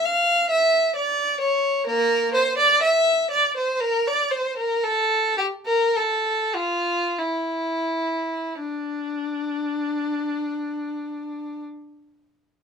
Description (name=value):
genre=classical, baroque-style suite movement for unaccompanied violin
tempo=41-67 BPM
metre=3/4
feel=rubato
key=D minor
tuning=A4 = 439 Hz
part: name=rich violin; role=solo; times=0.0-11.6 s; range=Bb3 to F5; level=-20 LUFS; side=equal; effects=none
room=light reverb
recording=minimal, uncompressed stereo recording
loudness=-20 LUFS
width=side -6 dB against mid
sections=0.0-8.6 A section; 8.6-12.6 B section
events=slowing down 0.5-8.6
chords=none